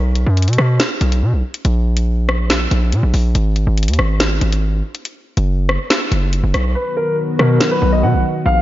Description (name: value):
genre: hip hop, drill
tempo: 141 BPM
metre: 4/4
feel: half-time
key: unclear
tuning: A4 = 440 Hz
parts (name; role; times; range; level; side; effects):
- distorted 808-style bass; bass; 0.0-8.6 s; Gb1 to B2; -15 LUFS; equal; distortion
- drill drum kit; drums; 0.2-7.7 s; hi-hat, rim click, snare drum; -19 LUFS; equal; overdrive
- dark baby grand piano; melody; 6.8-8.6 s; Bb4 to F#5; -19 LUFS; left 1 dB; low-pass filter, analog delay
- warm analog pad; sustained chords; 6.8-8.6 s; Db3 to F#4; -20 LUFS; left 2 dB; chorus
room: light reverb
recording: nothing above 7.5 kHz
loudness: -14 LUFS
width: side -14 dB against mid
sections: 0.0-8.6 A section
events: break 0.0-6.8; hi-hats muted 6.8-8.6; kick muted 6.8-7.2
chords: 0.0 B5; 1.6 N.C.; 3.4 Ab5; 5.1 Gbsus4; 6.8 B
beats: 0.37 0.80 1.22 | 1.65 2.07 2.50 2.92 | 3.35 3.77 4.20 4.63 | 5.05 5.48 5.90 6.33 | 6.75 7.18 7.61 8.03 | 8.46